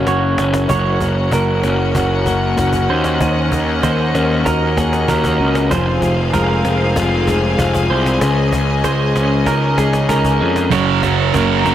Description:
post-rock; 96 BPM; 4/4; straight; Gb lydian; A4 = 440 Hz
rich studio string section; sustained chords; 0.0-11.7 s; Bb3 to Bb5; -21 LUFS; left 2 dB
electric guitar through a small old amp; arpeggios; 0.0-11.7 s; Db3 to Gb4; -21 LUFS; left 3 dB; digital delay
electric guitar through a small old amp; arpeggios; 0.0-11.7 s; Ab4 to Db5; -22 LUFS; right 5 dB; digital delay
fuzz picked electric bass; bass; 0.0-11.7 s; F1 to F2; -17 LUFS; equal; overdrive
cajon; drums; 0.1-11.7 s; -23 LUFS; equal
thick fuzz guitar; riff; 10.7-11.7 s; Gb2 to Gb3; -14 LUFS; right 9 dB; distortion
light reverb, studio reverb; -13 LUFS; side -11 dB against mid
0.7-11.7 A section
drum fill 0.0-0.7, 0.7-11.7; build-up 0.7-11.7
0.0 Gb; 3.2 Ebm7; 5.7 Fm; 8.2 Dbsus2; 10.7 Gb

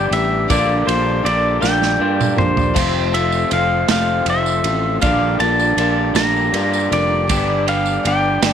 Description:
folk rock and heartland rock; 53 BPM (dotted quarters); 6/8; straight; A4 = 440 Hz
pedal steel guitar; melody; 0.0-8.5 s; C5 to Bb5; -19 LUFS; equal
picked swing-style acoustic guitar; accompaniment; 0.0-8.5 s; Bb2 to B4; -25 LUFS; left 12 dB
mellow tonewheel organ; sustained chords; 0.0-8.5 s; F4 to D6; -30 LUFS; equal; slow rotary speaker
electric guitar through a small old amp; riff; 0.0-8.5 s; F2 to G4; -21 LUFS; right 1 dB
sustaining fretless electric bass; bass; 0.0-8.5 s; F1 to G2; -22 LUFS; equal
natural country drum kit; drums; 0.1-8.5 s; crash cymbal, kick drum, ride cymbal, snare drum, toms; -23 LUFS; right 4 dB
tambourine; percussion; 0.5-8.5 s; -32 LUFS; right 17 dB
moderate spring reverb, RT60 2.6 s; 1960s-style stereo with parts hard left and right; -14 LUFS; side -8 dB against mid
0.0-8.5 A section
drum fill 1.6-2.8
0.0 G; 0.5 Bb6; 2.8 F; 5.0 Bb6; 7.3 G

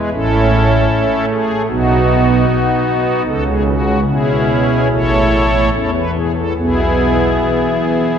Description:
classical, chorale-style piece for pipe organ; 70-77 BPM; 4/4; rubato; A4 = 440 Hz
pipe organ, strings celeste; solo; 0.0-8.2 s; A1 to C#5; -12 LUFS; equal
wet church reverb, RT60 3.4 s; dark, warm production; -12 LUFS; side -8 dB against mid
0.0-8.2 A section
0.1 A; 1.7 B; 3.3 C#m; 4.9 A; 6.5 E/B

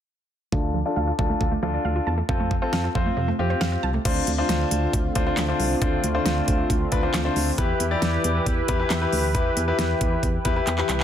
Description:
synth-pop; 136 BPM; 4/4; straight; D minor, D dorian from 4.1 s; A4 = 441 Hz
clear concert grand piano; accompaniment; 0.5-11.0 s; C4 to D5; -26 LUFS; left 3 dB; low-pass filter
analog pluck; arpeggios; 0.5-4.0 s; C3 to A5; -29 LUFS; right 4 dB; chorus, low-pass filter, digital delay
solid FM bass; bass; 0.5-11.0 s; C2 to F2; -26 LUFS; equal
pop drum kit; drums; 0.5-11.0 s; crash cymbal, handclaps, hi-hat, kick drum, snare drum; -26 LUFS; equal
brassy analog pad; sustained chords; 4.1-11.0 s; D3 to B4; -27 LUFS; right 1 dB; chorus
light reverb; dense, heavily limited modern master; -21 LUFS; side -9 dB against mid
0.5-4.1 A section; 4.1-11.0 B section
filter sweep 0.5-4.1; drum fill 10.7-11.0
0.5 Dm; 2.3 F; 4.1 Dm7; 7.6 Em

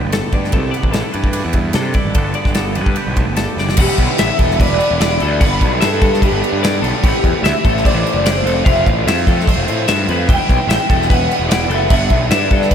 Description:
math rock and midwest emo; 148 BPM; 4/4; straight; G major; A4 = 441 Hz
twangy electric guitar; accompaniment; 0.0-5.4 s; D2 to G4; -25 LUFS; right 5 dB
fuzz picked electric bass; bass; 0.0-12.7 s; E1 to C3; -19 LUFS; equal; overdrive
twelve-string electric guitar; arpeggios; 0.1-12.7 s; A4 to G5; -22 LUFS; left 6 dB
modern studio drum kit; drums; 0.1-12.7 s; crash cymbal, kick drum, ride cymbal, snare drum; -16 LUFS; equal
electric guitar through a small old amp; melody; 3.8-12.7 s; G4 to G5; -19 LUFS; equal; ensemble chorus, tape echo
raw garage guitar; riff; 3.8-12.7 s; G2 to F4; -22 LUFS; equal; overdrive
moderate huge ambient reverb, RT60 5.2 s; dreamy mix soaked in reverb; -12 LUFS; side -8 dB against mid
0.0-3.8 A section; 3.8-12.7 B section
drum fill 3.6
0.0 Gadd9; 0.5 C69; 2.2 Gmaj9; 3.8 Em7; 5.4 Gmaj7; 7.0 Am7; 8.4 Fmaj7; 10.3 Em7; 11.9 Gmaj7

